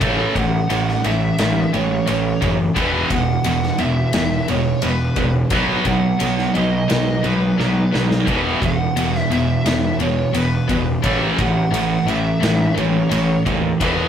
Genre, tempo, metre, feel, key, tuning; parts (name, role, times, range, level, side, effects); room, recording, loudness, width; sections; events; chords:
hard rock; 87 BPM; 4/4; straight; A4 = 441 Hz
smooth overdriven lead guitar; melody; 0.0-14.1 s; B4 to F#5; -25 LUFS; right 1 dB
scooped high-gain guitar; riff; 0.0-14.1 s; E2 to B3; -20 LUFS; right 4 dB; distortion
tight distorted guitar; riff; 0.0-14.1 s; E2 to B3; -24 LUFS; left 7 dB; distortion
fuzz picked electric bass; bass; 0.0-14.1 s; E1 to D#2; -24 LUFS; left 1 dB; overdrive
big rock drum kit; drums; 0.0-14.0 s; kick drum, ride cymbal, snare drum; -24 LUFS; left 1 dB
moderate studio reverb, RT60 0.5 s; rough rehearsal-room recording; -16 LUFS; side -8 dB against mid
0.0-14.1 A section
drum fill 7.6-8.3
0.0 A5; 2.8 E5; 5.5 B; 8.3 E5; 11.0 A